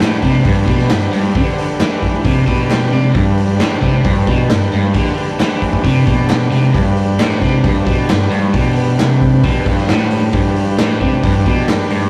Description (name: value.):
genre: garage rock duo or trio.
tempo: 134 BPM.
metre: 4/4.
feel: straight.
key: G major.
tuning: A4 = 441 Hz.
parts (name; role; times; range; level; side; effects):
combo organ; sustained chords; 0.0-12.1 s; D4 to B5; -23 LUFS; equal; none.
crunchy overdriven guitar; riff; 0.0-12.1 s; G2 to E3; -17 LUFS; equal; spring reverb.
raw garage drum kit; drums; 0.0-12.0 s; hi-hat, kick drum, snare drum; -18 LUFS; equal; none.
group handclap; percussion; 0.0-11.8 s; none; -30 LUFS; equal; none.
room: moderate studio reverb, RT60 0.5 s.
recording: rough rehearsal-room recording.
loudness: -14 LUFS.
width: mono.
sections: 0.0-12.1 A section.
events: transistor combo organ fill 2.2-3.1.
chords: 0.0 G.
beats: 0.01 0.45 0.90 | 1.35 1.80 2.25 2.70 | 3.15 3.60 4.05 4.50 | 4.94 5.39 5.84 6.29 | 6.74 7.19 7.64 8.09 | 8.54 8.99 9.44 9.88 | 10.33 10.78 11.23 11.68.